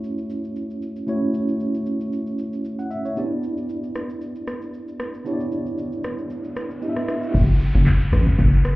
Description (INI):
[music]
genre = amapiano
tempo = 115 BPM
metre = 4/4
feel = swing 55% on 16ths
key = F# phrygian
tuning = A4 = 440 Hz
[part]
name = mellow tine electric piano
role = accompaniment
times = 0.0-7.4 s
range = A3 to F#5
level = -25 LUFS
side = right 1 dB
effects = medium stereo tremolo
[part]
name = deep house drum kit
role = drums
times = 0.0-8.8 s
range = handclaps, hi-hat, kick drum, rim click, shaker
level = -23 LUFS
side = equal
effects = overdrive
[part]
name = riser and downlifter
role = sound effects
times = 5.9-8.8 s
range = none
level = -37 LUFS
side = equal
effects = none
[part]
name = hollow log drum bass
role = bass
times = 7.3-8.7 s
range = F#1 to A1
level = -16 LUFS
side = equal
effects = none
[sound]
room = digital ambience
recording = heard muffled through a wall, club reverb, EQ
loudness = -21 LUFS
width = side -19 dB against mid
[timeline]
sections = 0.0-7.3 A section; 7.3-8.8 B section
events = riser 5.9-7.3; drop 7.3-8.8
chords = 0.0 F#m7; 3.2 Em7; 7.3 F#m